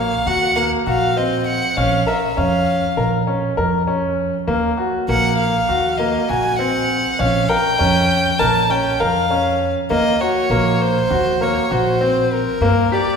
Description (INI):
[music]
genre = contemporary instrumental, chamber music in an uneven meter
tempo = 199 BPM (eighths)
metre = 9/8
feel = straight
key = unclear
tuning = A4 = 440 Hz
[part]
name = warm violin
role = melody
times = 0.0-13.2 s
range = Bb4 to A5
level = -19 LUFS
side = equal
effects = none
[part]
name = bright grand piano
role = arpeggios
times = 0.0-13.2 s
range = Bb3 to Bb4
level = -19 LUFS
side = left 1 dB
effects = none
[part]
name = upright bass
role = bass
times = 0.0-12.9 s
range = Bb1 to G2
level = -22 LUFS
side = right 1 dB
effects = none
[sound]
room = wet scoring stage reverb, RT60 2.0 s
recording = recorded in a church or concert hall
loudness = -15 LUFS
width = side -6 dB against mid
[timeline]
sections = 0.0-13.2 A section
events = none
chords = 0.0 Ebm; 1.8 Bbm; 4.5 Ebm; 7.2 Bbm; 9.9 Ebm7; 12.6 Gm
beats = 0.26 0.57 0.87 1.17 1.47 | 1.77 2.07 2.37 2.68 2.98 3.28 3.58 3.88 4.18 | 4.48 4.79 5.09 5.39 5.69 5.99 6.29 6.59 6.90 | 7.20 7.50 7.80 8.10 8.40 8.71 9.01 9.31 9.61 | 9.91 10.21 10.52 10.82 11.12 11.42 11.72 12.03 12.33 | 12.63 12.93